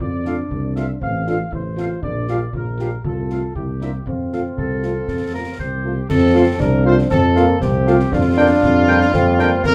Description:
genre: military-style march for wind band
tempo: 118 BPM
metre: 2/4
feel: straight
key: F major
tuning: A4 = 441 Hz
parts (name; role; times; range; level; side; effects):
- mellow trumpet section; melody; 0.0-9.7 s; F4 to F5; -27 LUFS; equal; none
- warm euphonium; second line; 0.0-9.7 s; Bb3 to G4; -24 LUFS; equal; none
- mellow tuba; bass; 0.0-9.7 s; A1 to F2; -22 LUFS; equal; none
- concert bass drum, concert snare drum and clash cymbals; drums; 0.0-9.7 s; none; -30 LUFS; equal; none
- warm woodwind section; second line; 0.3-9.5 s; G4 to G5; -28 LUFS; equal; none
- warm French horn section; accompaniment; 0.3-9.5 s; G3 to F4; -24 LUFS; equal; none
- warm trombone section; sustained chords; 6.1-9.7 s; F3 to C4; -28 LUFS; equal; none
room: wet small room reverb, RT60 0.5 s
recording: heard from further back in the room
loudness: -18 LUFS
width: mono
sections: 0.0-6.1 A section; 6.1-9.7 B section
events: none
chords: 0.0 F; 1.0 F/A; 2.0 Gm7/Bb; 3.0 F/C; 3.6 C7; 4.1 F; 8.1 Gm7/F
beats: | 0.00 0.51 | 1.01 1.52 | 2.03 2.54 | 3.05 3.56 | 4.06 4.57 | 5.08 5.59 | 6.09 6.60 | 7.11 7.62 | 8.12 8.63 | 9.14 9.64

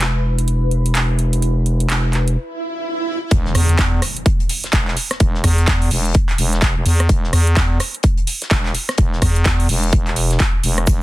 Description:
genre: bass house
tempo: 127 BPM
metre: 4/4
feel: swing 61% on 16ths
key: unclear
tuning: A4 = 444 Hz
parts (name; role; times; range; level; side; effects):
- growling FM bass; bass; 0.0-11.0 s; E1 to E2; -17 LUFS; equal; overdrive, sidechain pumping
- big-room dance drum kit; drums; 0.0-11.0 s; handclaps, hi-hat, rim click; -21 LUFS; right 2 dB; none
- airy breathy pad; texture; 0.0-2.4 s; E4 to B5; -30 LUFS; left 1 dB; chorus, phaser, sidechain pumping
- swell and impact; sound effects; 2.5-5.2 s; none; -25 LUFS; right 1 dB; none
- damped 70s drum kit; drums; 3.3-11.0 s; hi-hat, snare drum; -31 LUFS; left 5 dB; sidechain pumping on hats, high-pass filter on hats, high-pass filter on snare, high-pass filter on room
- electronic kick drum; drums; 3.3-11.0 s; none; -16 LUFS; equal; overdrive
- tube shaker; percussion; 10.9-11.0 s; none; -28 LUFS; right 7 dB; none
room: small room ambience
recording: dense, heavily limited modern master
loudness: -15 LUFS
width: side -17 dB against mid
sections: 0.0-3.3 A section; 3.3-11.0 B section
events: stop 2.4-3.3; swell 2.5-3.3; drop 3.3-11.0; impact 3.3-5.2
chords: 0.0 E5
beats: 0.01 0.48 0.95 | 1.42 1.90 2.37 2.84 | 3.31 3.79 4.26 4.73 | 5.20 5.68 6.15 6.62 | 7.09 7.57 8.04 8.51 | 8.98 9.46 9.93 10.40 | 10.87

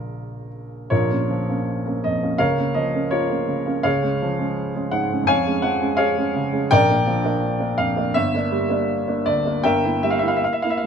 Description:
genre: classical, romantic character piece for solo piano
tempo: 83 BPM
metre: 2/4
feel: uneven beats, rubato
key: Bb minor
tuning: A4 = 440 Hz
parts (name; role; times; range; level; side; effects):
- warm baby grand piano; solo; 0.0-10.9 s; G1 to Ab5; -19 LUFS; equal; none
room: moderate recital hall reverb, RT60 1.5 s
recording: close, detailed microphones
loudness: -18 LUFS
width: side -7 dB against mid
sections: 0.9-10.9 A section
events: none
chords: 0.0 Bbm; 2.4 Bbm/Db; 3.9 Db; 5.3 Db/F; 6.7 Bb; 8.1 Gm; 9.6 Edim/G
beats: 0.02 | 0.91 1.68 | 2.40 3.12 | 3.85 4.58 | 5.30 6.00 | 6.71 7.42 | 8.14 8.88 | 9.63 10.41

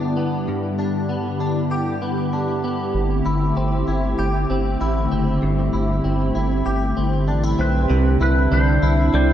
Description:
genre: dream pop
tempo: 97 BPM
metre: 4/4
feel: straight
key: unclear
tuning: A4 = 440 Hz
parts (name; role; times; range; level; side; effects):
- hollow soft pad; sustained chords; 0.0-9.3 s; D3 to G4; -22 LUFS; equal; ensemble chorus
- direct-recorded clean electric guitar; arpeggios; 0.0-9.3 s; G2 to G4; -24 LUFS; left 1 dB; ensemble chorus, tape echo
- round analog bass; bass; 2.9-9.3 s; F#1 to C2; -20 LUFS; equal; none
- clean lap steel guitar; melody; 7.6-9.3 s; B4 to C5; -24 LUFS; right 1 dB; tape echo
room: moderate lush hall reverb, RT60 1.9 s, digital ambience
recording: dark, warm production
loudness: -18 LUFS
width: side -10 dB against mid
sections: 0.0-7.9 A section; 7.9-9.3 B section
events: none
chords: 0.0 G6; 3.0 D9sus4; 7.9 Cmaj9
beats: | 0.48 1.09 1.71 2.33 | 2.95 3.57 4.19 4.81 | 5.42 6.04 6.66 7.28 | 7.90 8.52 9.14

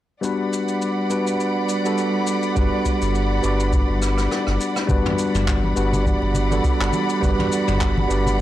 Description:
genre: sunset chillout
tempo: 103 BPM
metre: 4/4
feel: swing 56% on 16ths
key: G major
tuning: A4 = 440 Hz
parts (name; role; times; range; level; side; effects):
- bell-like tine electric piano; accompaniment; 0.2-8.4 s; G3 to D5; -22 LUFS; moving between left 4 dB and right 4 dB; auto-pan, low-pass filter, tape echo
- rich studio string section; sustained chords; 0.2-8.4 s; G3 to B5; -25 LUFS; left 1 dB; none
- soft brush drum kit; drums; 0.2-8.4 s; handclaps, rim click, shaker, toms; -29 LUFS; left 1 dB; none
- drifting glass-harmonics texture; texture; 0.5-4.9 s; D5 to D6; -34 LUFS; right 1 dB; chorus, built-in reverb
- round analog bass; bass; 2.6-8.4 s; G1; -22 LUFS; equal; tube saturation
- electronic kick drum; drums; 2.6-8.4 s; none; -22 LUFS; equal; none
- congas; percussion; 4.9-8.4 s; none; -28 LUFS; left 1 dB; none
room: light reverb, studio reverb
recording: cassette tape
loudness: -18 LUFS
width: side -13 dB against mid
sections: 0.2-4.9 A section; 4.9-8.4 B section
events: drum fill 4.0-4.9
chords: 0.2 Gmaj7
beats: | 0.24 0.82 1.40 1.98 | 2.57 3.15 3.73 4.31 | 4.90 5.48 6.06 6.64 | 7.23 7.81 8.39

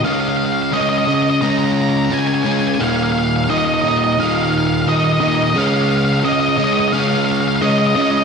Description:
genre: rock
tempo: 87 BPM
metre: 4/4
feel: straight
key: unclear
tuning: A4 = 440 Hz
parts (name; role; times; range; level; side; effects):
- octave-fuzz lead guitar; melody; 0.0-8.2 s; Eb5 to Bb5; -18 LUFS; equal; distortion, slapback echo, digital delay
- overdriven semi-hollow guitar; riff; 0.0-8.2 s; Eb2 to Db4; -16 LUFS; equal; none
room: wet lush hall reverb, RT60 2.0 s, digital ambience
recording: big arena sound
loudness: -14 LUFS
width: side -5 dB against mid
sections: 0.0-8.2 A section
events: build-up 0.0-8.2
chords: 0.0 Dbadd9; 2.8 Eb5; 5.6 Dbadd9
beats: | 0.04 0.73 1.42 2.11 | 2.80 3.49 4.18 4.87 | 5.56 6.25 6.93 7.62

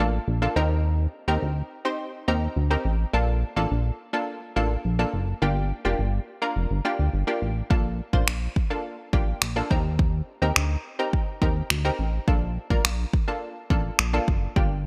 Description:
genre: dance-pop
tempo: 105 BPM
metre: 4/4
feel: straight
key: Bb major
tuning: A4 = 440 Hz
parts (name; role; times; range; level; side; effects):
- punchy chord stab; accompaniment; 0.0-14.8 s; Bb3 to C5; -31 LUFS; equal; chorus, sidechain pumping
- chorused synth bass; bass; 0.0-14.9 s; F1 to Eb2; -27 LUFS; equal; sidechain pumping
- deep house drum kit; drums; 7.7-14.7 s; finger snaps, kick drum; -25 LUFS; equal; none
room: light reverb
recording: bright 1980s-style digital production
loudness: -25 LUFS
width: mono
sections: 0.0-14.9 A section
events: none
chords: 0.0 Bbmaj7; 0.6 Eb6; 3.1 Bbmaj7; 5.4 Gm7; 7.7 Bbmaj7; 9.7 Eb6; 12.3 Bbmaj7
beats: 0.28 | 0.85 1.42 1.99 2.56 | 3.13 3.71 4.28 4.85 | 5.42 5.99 6.56 7.13 | 7.71 8.28 8.85 9.42 | 9.99 10.56 11.13 11.71 | 12.28 12.85 13.42 13.99 | 14.56

